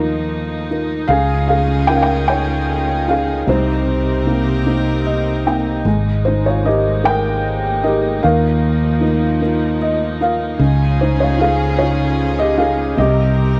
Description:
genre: acoustic folk-pop ballad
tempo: 50 BPM (dotted quarters)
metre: 6/8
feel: straight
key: unclear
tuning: A4 = 440 Hz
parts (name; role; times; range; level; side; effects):
- felt-muted upright piano; melody; 0.0-13.6 s; C3 to G5; -19 LUFS; equal; none
- rich chamber string section; sustained chords; 0.0-13.6 s; C3 to Bb4; -28 LUFS; equal; none
- mellow fretless electric bass; bass; 0.0-13.6 s; Ab1 to Eb2; -21 LUFS; equal; none
room: light reverb, small room ambience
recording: none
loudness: -17 LUFS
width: mono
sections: 0.0-13.6 A section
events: felt piano fill 4.7-5.9, 9.4-10.6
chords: 0.0 Ebsus2; 1.1 Dbadd9; 3.5 Cm7; 5.9 Absus2; 8.2 Ebsus2; 10.6 Dbadd9; 13.0 Cm7

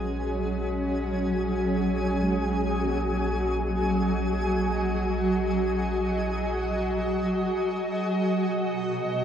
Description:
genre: ambient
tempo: free time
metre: none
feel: none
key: unclear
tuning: A4 = 443 Hz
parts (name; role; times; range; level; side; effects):
- granular cloud pad; sustained chords; 0.0-9.2 s; B2 to D#5; -25 LUFS; right 1 dB; built-in reverb
- handpan; arpeggios; 0.0-8.5 s; G#3 to A#4; -43 LUFS; equal; none
- deep rumbling drone; bass; 0.0-9.2 s; A#1 to B1; -32 LUFS; equal; built-in reverb
- hand-pumped harmonium; drone; 0.0-9.2 s; G#3 to B3; -44 LUFS; left 1 dB; none
- twinkling granular texture; texture; 0.0-8.4 s; G#4 to G#5; -33 LUFS; left 1 dB; built-in reverb, shimmer reverb
room: wet huge ambient reverb, RT60 7.8 s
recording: worn, warbling old tape, cassette tape, warbly pitch drift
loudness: -24 LUFS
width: side -9 dB against mid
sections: 0.0-8.3 A section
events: filter sweep on ambient pad 0.0-8.3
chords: 0.0 F#/A#; 8.3 B6

